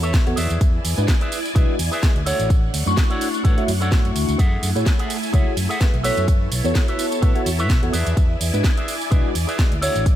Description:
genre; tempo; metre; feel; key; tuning
filtered disco house; 127 BPM; 4/4; swing 55% on 16ths; unclear; A4 = 440 Hz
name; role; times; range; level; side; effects
phased string machine; sustained chords; 0.0-10.2 s; A3 to C#6; -29 LUFS; equal; ensemble chorus, phaser, vintage 12-bit sampler grit, sidechain pumping
electric guitar with an envelope filter; riff; 0.0-10.2 s; G#4 to F#5; -28 LUFS; equal; sidechain pumping
fingered electric bass; bass; 0.0-10.2 s; A1 to B2; -23 LUFS; equal; sidechain pumping
house drum kit; drums; 0.0-10.2 s; hi-hat, ride cymbal, snare drum, tambourine; -28 LUFS; right 2 dB; sidechain pumping on hats, small room ambience, sidechain pumping on perc, sidechain pumping on cymbals
electronic kick drum; drums; 0.1-10.2 s; none; -17 LUFS; equal; small room ambience
mellow tine electric piano; accompaniment; 0.3-10.0 s; G#3 to C#6; -25 LUFS; equal; phaser, sidechain pumping
room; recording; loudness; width
digital ambience; none; -17 LUFS; side -12 dB against mid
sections
0.0-10.2 A section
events
none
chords
0.4 E7; 2.3 Dmaj7; 4.4 F#m9; 6.0 B9sus4; 7.9 E7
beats
0.14 | 0.61 1.08 1.56 2.03 | 2.50 2.97 3.44 3.92 | 4.39 4.86 5.33 5.81 | 6.28 6.75 7.22 7.70 | 8.17 8.64 9.12 9.59 | 10.06

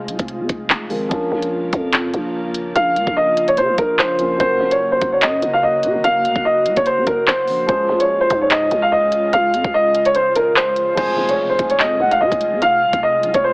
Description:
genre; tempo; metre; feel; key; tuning
hip hop, drill; 146 BPM; 4/4; half-time; F phrygian; A4 = 440 Hz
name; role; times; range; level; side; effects
dark concert grand piano; accompaniment; 0.0-13.5 s; F3 to Bb4; -27 LUFS; equal; low-pass filter
glassy FM pad; sustained chords; 0.0-13.5 s; C3 to Gb4; -28 LUFS; equal; ensemble chorus, built-in reverb
growling 808-style bass; bass; 0.0-13.5 s; Eb1 to Db3; -25 LUFS; equal; none
drill drum kit; drums; 0.1-13.4 s; crash cymbal, handclaps, hi-hat, kick drum; -20 LUFS; equal; none
dark upright piano; melody; 2.8-13.5 s; Bb4 to F5; -15 LUFS; equal; low-pass filter
gliding portamento lead; second line; 11.0-13.0 s; F5 to Ab5; -22 LUFS; equal; chorus, digital delay
impact; sound effects; 11.1-12.6 s; none; -37 LUFS; equal; none
room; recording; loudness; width
little or no reverb; heavily compressed radio sound, multiband compression, AM radio sound; -14 LUFS; side -31 dB against mid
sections
0.0-11.0 A section; 11.0-13.5 B section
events
break 0.0-2.8; kick muted 10.2-11.0; impact 11.0-12.6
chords
0.0 Fm; 1.1 Bbm; 4.4 Gb; 7.7 Db; 11.0 Fm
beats
0.29 0.70 | 1.11 1.52 1.93 2.35 | 2.76 3.17 3.58 3.99 | 4.40 4.81 5.22 5.63 | 6.04 6.45 6.87 7.28 | 7.69 8.10 8.51 8.92 | 9.33 9.74 10.15 10.56 | 10.97 11.39 11.80 12.21 | 12.62 13.03 13.44

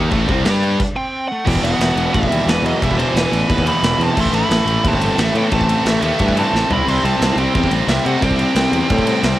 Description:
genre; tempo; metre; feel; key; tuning
heavy metal; 178 BPM; 4/4; straight; E harmonic minor; A4 = 443 Hz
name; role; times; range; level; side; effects
heavy high-gain guitar; riff; 0.0-9.4 s; E2 to G4; -26 LUFS; equal; none
high-gain distorted guitar; riff; 0.0-9.4 s; E2 to G4; -22 LUFS; right 7 dB; distortion
sludgy distorted guitar; riff; 0.0-9.4 s; E2 to G4; -23 LUFS; left 6 dB; overdrive
fuzz fingered electric bass; bass; 0.0-9.3 s; E1 to C3; -19 LUFS; equal; overdrive
big rock drum kit; drums; 0.1-9.3 s; crash cymbal, kick drum, ride cymbal, snare drum, toms; -22 LUFS; equal; cassette tape
high-gain lead guitar; melody; 1.0-9.4 s; B4 to C6; -22 LUFS; equal; distortion, cassette tape
high-gain lead guitar; second line; 1.0-9.4 s; E3 to E4; -25 LUFS; right 2 dB; distortion
room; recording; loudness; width
little or no reverb; home recording on cassette; -14 LUFS; side -14 dB against mid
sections
0.0-1.5 A section; 1.5-9.4 B section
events
stop 0.8-1.5; drum fill 6.5-6.9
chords
0.4 G5; 0.8 N.C.; 1.5 Em; 4.2 Am; 6.7 C5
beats
| 0.11 0.45 0.79 1.12 | 1.46 1.80 2.13 2.47 | 2.81 3.15 3.48 3.82 | 4.16 4.50 4.83 5.17 | 5.51 5.84 6.18 6.52 | 6.86 7.20 7.53 7.87 | 8.21 8.54 8.88 9.22

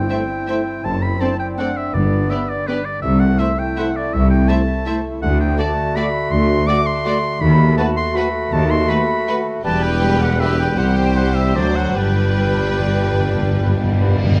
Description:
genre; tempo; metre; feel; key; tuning
classical, orchestral ballroom waltz; 138-178 BPM; 3/4; rubato; G major; A4 = 440 Hz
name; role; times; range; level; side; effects
clear oboe; second line; 0.0-14.2 s; B4 to D6; -27 LUFS; equal; none
mellow clarinet; second line; 0.0-14.2 s; D4 to C5; -30 LUFS; equal; none
mellow hollow small flute group; second line; 0.0-14.2 s; B4 to D6; -32 LUFS; equal; none
warm bassoon; accompaniment; 0.0-14.2 s; F#3 to C4; -29 LUFS; equal; none
concert harp; arpeggios; 0.0-14.4 s; F#2 to A5; -31 LUFS; equal; none
clear studio cello section; bass; 0.0-14.2 s; C2 to G2; -26 LUFS; equal; none
mellow tuba; bass; 0.0-14.2 s; E1 to D#2; -25 LUFS; equal; none
rich symphonic double bass section; bass; 0.0-14.2 s; E1 to D#2; -25 LUFS; equal; none
rich symphonic violin section; melody; 0.1-14.2 s; B4 to E5; -33 LUFS; equal; none
clear symphonic violin section; second line; 0.1-14.2 s; D4 to A4; -34 LUFS; equal; none
warm symphonic viola section; accompaniment; 0.1-14.2 s; F#3 to C4; -30 LUFS; equal; none
mellow French horn section; sustained chords; 0.1-14.2 s; G3 to G4; -30 LUFS; equal; none
mellow trumpet section; stabs; 0.1-14.2 s; B4 to D5; -32 LUFS; equal; none
timpani; percussion; 1.9-2.5, 12.0-14.4 s; G2; -23 LUFS; equal; none
room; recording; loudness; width
light reverb; close, detailed microphones; -18 LUFS; mono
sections
0.0-14.4 A section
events
timpani fill 12.0-14.4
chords
0.0 Am7/G; 0.8 D7/F#; 1.9 G; 3.0 Am/C; 5.2 D; 7.4 B7/D#; 9.6 Em; 10.8 C5; 11.6 D7; 12.0 G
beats
0.10 0.48 | 0.84 1.21 1.59 | 1.95 2.31 2.68 | 3.03 3.40 3.78 | 4.13 4.49 4.87 | 5.23 5.58 5.96 | 6.31 6.68 7.05 | 7.41 7.78 8.16 | 8.52 8.89 9.28 | 9.64 10.02 10.40 | 10.77 11.15 11.55 | 11.95 12.37 12.79 | 13.20 13.60 14.01

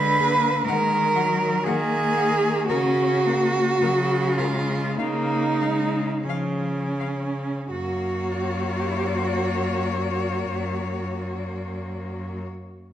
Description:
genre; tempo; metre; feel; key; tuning
classical, lyrical piece for cello ensemble; 39-63 BPM; 4/4; rubato; F# major; A4 = 440 Hz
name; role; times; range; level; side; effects
rich cello; second line; 0.0-12.4 s; C#4 to B4; -24 LUFS; right 3 dB; none
rich cello; accompaniment; 0.0-12.4 s; E#3 to C#4; -29 LUFS; left 4 dB; none
rich cello; bass; 0.0-12.4 s; F#2 to D#3; -27 LUFS; equal; none
rich cello; melody; 0.2-12.4 s; G#4 to F#5; -32 LUFS; left 8 dB; none
room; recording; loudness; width
wet recital hall reverb, RT60 1.4 s; none; -21 LUFS; side -11 dB against mid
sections
0.0-7.7 A section; 7.7-12.9 B section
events
slowing down 0.0-7.7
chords
0.0 A#7/D; 0.7 D#m; 2.7 F#/C#; 5.0 C#; 7.7 F#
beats
0.67 1.65 | 2.69 3.80 4.98 6.24 | 7.70 9.10 10.51 11.92

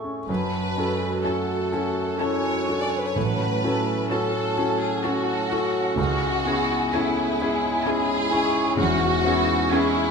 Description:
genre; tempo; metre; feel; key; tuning
classical; 64 BPM; 3/4; rubato; F# minor; A4 = 440 Hz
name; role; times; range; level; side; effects
clear grand piano; melody; 0.0-10.1 s; C#2 to A4; -25 LUFS; left 2 dB; none
flute section; second line; 0.0-10.1 s; F#5 to C#6; -32 LUFS; right 2 dB; none
warm bassoon; accompaniment; 0.0-10.1 s; E3 to A3; -34 LUFS; right 3 dB; none
dark clarinet; second line; 0.3-10.1 s; B3 to F#4; -35 LUFS; equal; none
rich studio violin section; second line; 0.3-10.1 s; E4 to D5; -26 LUFS; left 1 dB; none
warm French horn section; sustained chords; 0.3-10.1 s; C#4 to F#4; -33 LUFS; left 5 dB; none
warm trombone section; sustained chords; 0.3-10.1 s; F#2 to G#3; -33 LUFS; right 7 dB; none
clear studio cello section; bass; 0.3-9.5 s; C#2 to A2; -32 LUFS; right 4 dB; none
rich studio double bass section; bass; 0.3-9.5 s; E1 to C#2; -33 LUFS; right 6 dB; none
warm studio violin section; melody; 1.2-10.1 s; G#5 to A5; -35 LUFS; equal; none
rich studio viola section; accompaniment; 1.2-10.1 s; C#4 to A4; -33 LUFS; right 3 dB; none
timpani; percussion; 3.2-4.5 s; A2; -33 LUFS; right 2 dB; none
room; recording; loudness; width
wet recital hall reverb, RT60 1.5 s; recorded in a church or concert hall; -21 LUFS; side -5 dB against mid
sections
0.3-10.1 A section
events
none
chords
0.3 F#m; 3.2 F#m/A; 6.0 C#m; 8.8 C#m/E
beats
| 0.29 1.25 2.20 | 3.16 4.11 5.04 | 5.98 6.93 7.86 | 8.78 9.72

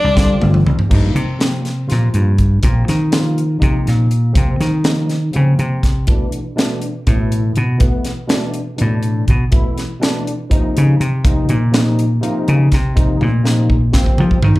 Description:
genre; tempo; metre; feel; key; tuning
electric jazz fusion; 244 BPM (eighths); 7/8; straight; unclear; A4 = 440 Hz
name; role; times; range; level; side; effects
edgy tenor saxophone; melody; 0.0-0.7 s; D4; -18 LUFS; left 2 dB; plate reverb, slapback echo, analog delay
vintage slap bass; bass; 0.0-14.6 s; G1 to F3; -15 LUFS; equal; none
barky tine electric piano; accompaniment; 0.1-14.4 s; B2 to F4; -21 LUFS; equal; ensemble chorus, plate reverb, slapback echo
crisp fusion drum kit; drums; 0.2-14.6 s; crash cymbal, hi-hat, kick drum, snare drum, toms; -16 LUFS; equal; none
room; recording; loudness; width
little or no reverb; live gig heard through the venue's PA, club reverb; -13 LUFS; side -19 dB against mid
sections
0.9-14.6 A section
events
drum fill 0.2-0.9, 13.2-14.6; slap bass solo 0.9-14.6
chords
0.0 G7sus4; 0.9 F9sus4; 6.1 E7sus4; 10.5 F7sus4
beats
0.17 0.41 0.66 | 0.91 1.15 1.40 1.64 1.89 2.14 2.38 | 2.63 2.88 3.12 3.37 3.61 3.86 4.11 | 4.35 4.60 4.84 5.09 5.34 5.58 5.83 | 6.08 6.32 6.57 6.81 7.06 7.31 7.55 | 7.80 8.04 8.29 8.54 8.78 9.03 9.28 | 9.52 9.77 10.01 10.26 10.50 10.75 10.99 | 11.24 11.49 11.73 11.98 12.22 12.47 12.71 | 12.96 13.21 13.45 13.70 13.94 14.19 14.44

